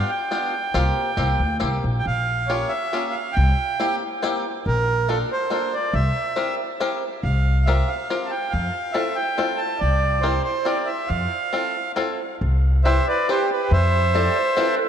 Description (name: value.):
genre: musette.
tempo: 139 BPM.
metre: 3/4.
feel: straight.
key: F major.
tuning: A4 = 444 Hz.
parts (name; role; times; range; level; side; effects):
accordion; melody; 0.0-14.8 s; G4 to A5; -23 LUFS; right 2 dB; ping-pong delay.
bluegrass banjo; accompaniment; 0.0-14.8 s; Bb3 to B4; -26 LUFS; left 2 dB; none.
upright bass; bass; 0.7-14.3 s; Bb1 to F2; -20 LUFS; equal; none.
mellow clarinet; second line; 14.1-14.9 s; A4 to D5; -26 LUFS; right 2 dB; ping-pong delay.
room: moderate plate reverb, RT60 3.7 s.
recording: dreamy mix soaked in reverb.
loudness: -19 LUFS.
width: side -8 dB against mid.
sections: 0.0-12.4 A section; 12.4-14.9 B section.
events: none.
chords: 0.0 G7; 0.7 C7sus4; 1.2 C7; 2.1 Bbm6; 3.4 C7; 4.7 Bbmaj7; 5.9 C7; 7.2 C7sus4; 8.5 Fmaj7; 9.8 C7; 11.1 Fmaj7; 12.4 Cmaj7; 13.7 Fmaj7.